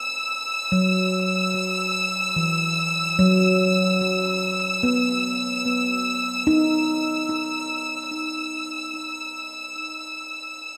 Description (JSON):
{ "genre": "ambient", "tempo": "73 BPM", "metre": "4/4", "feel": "straight", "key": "unclear", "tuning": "A4 = 440 Hz", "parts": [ { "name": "clear studio violin section", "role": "texture", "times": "0.0-10.8 s", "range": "E6", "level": "-26 LUFS", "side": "equal", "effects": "none" }, { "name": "handpan", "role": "arpeggios", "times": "0.7-9.5 s", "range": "E3 to D#4", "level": "-25 LUFS", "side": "equal", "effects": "analog delay" } ], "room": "wet spring reverb, RT60 2.3 s", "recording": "echo-heavy mix", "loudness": "-23 LUFS", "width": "mono", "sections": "0.0-10.8 A section", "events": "none", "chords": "0.0 Badd11/E" }